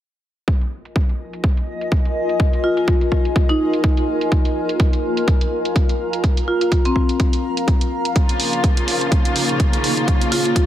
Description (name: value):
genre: bass house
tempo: 125 BPM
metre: 4/4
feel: swing 56% on 16ths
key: F minor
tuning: A4 = 444 Hz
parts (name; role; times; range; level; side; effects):
- electronic hi-hat; drums; 0.5-10.7 s; none; -26 LUFS; right 2 dB; overdrive, low-pass filter on hats, low-pass filter on room
- electronic kick drum; drums; 0.5-10.7 s; none; -17 LUFS; equal; overdrive
- granular cloud pad; texture; 1.3-10.7 s; Bb3 to Db6; -23 LUFS; left 1 dB; built-in reverb, sidechain pumping
- marimba with medium hard mallets; melody; 2.6-7.3, 10.3-10.5 s; C4 to F4; -22 LUFS; equal; digital delay
- rich studio string section; sustained chords; 8.2-10.7 s; Db3 to F4; -22 LUFS; equal; sidechain pumping
room: light reverb, digital ambience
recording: heavily compressed radio sound, multiband compression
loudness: -16 LUFS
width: side -12 dB against mid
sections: 0.5-10.7 A section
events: none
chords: 0.5 Fm; 8.2 Bbm